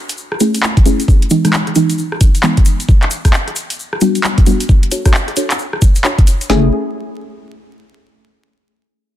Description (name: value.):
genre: UK garage, two-step garage.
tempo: 133 BPM.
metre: 4/4.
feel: swing 62% on 16ths.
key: F# minor.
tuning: A4 = 440 Hz.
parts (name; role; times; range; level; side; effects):
garage drum kit; drums; 0.1-6.5 s; handclaps, hi-hat, rim click; -19 LUFS; equal; none.
tube shaker; percussion; 0.1-6.5 s; none; -26 LUFS; left 4 dB; none.
deep mellow chord stab; stabs; 0.4-6.7 s; E3 to C#5; -16 LUFS; left 1 dB; chorus, digital delay.
garage drum kit; drums; 0.8-6.6 s; kick drum, snare drum; -10 LUFS; equal; none.
deep soft wobble bass; bass; 6.5-6.7 s; F#1; -14 LUFS; right 1 dB; chorus.
room: light reverb, digital ambience.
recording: dense, heavily limited modern master, vinyl crackle.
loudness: -11 LUFS.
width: side -12 dB against mid.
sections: 0.0-6.5 A section; 6.5-8.3 B section.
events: filter sweep on synth stab 0.0-6.5.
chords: 0.0 Amaj7; 1.1 Emaj7; 2.9 Gmaj7; 4.7 Dmaj7; 6.5 F#m9.